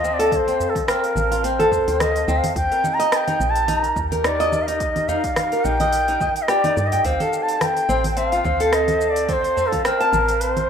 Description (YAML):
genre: organic downtempo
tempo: 107 BPM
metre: 4/4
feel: swing 55% on 16ths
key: D phrygian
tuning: A4 = 440 Hz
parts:
  - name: bright reedy bansuri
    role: melody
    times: 0.0-10.7 s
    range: A4 to Bb5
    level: -21 LUFS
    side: equal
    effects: digital delay
  - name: warbly tape-like pad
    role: sustained chords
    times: 0.0-10.7 s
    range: C4 to A5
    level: -30 LUFS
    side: equal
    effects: chorus, built-in reverb, sidechain pumping
  - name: flamenco guitar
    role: arpeggios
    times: 0.0-10.6 s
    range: C4 to A5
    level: -22 LUFS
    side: equal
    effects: ping-pong delay
  - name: woody FM bass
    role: bass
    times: 0.0-10.7 s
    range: A1 to G2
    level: -26 LUFS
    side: equal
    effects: sidechain pumping
  - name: afro-pop drum kit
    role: drums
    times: 0.0-10.7 s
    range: congas, hi-hat, rim click, shaker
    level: -26 LUFS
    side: right 1 dB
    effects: small room ambience
  - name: electronic kick drum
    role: drums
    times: 0.3-9.8 s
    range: none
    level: -30 LUFS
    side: equal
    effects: small room ambience
  - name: udu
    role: percussion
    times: 0.6-9.7 s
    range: none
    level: -33 LUFS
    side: equal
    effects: none
room: wet lush hall reverb, RT60 2.0 s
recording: rough home demo mix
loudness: -17 LUFS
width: side -7 dB against mid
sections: 0.0-10.7 A section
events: none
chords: 0.0 Dm7; 2.6 Eb; 7.0 Dm7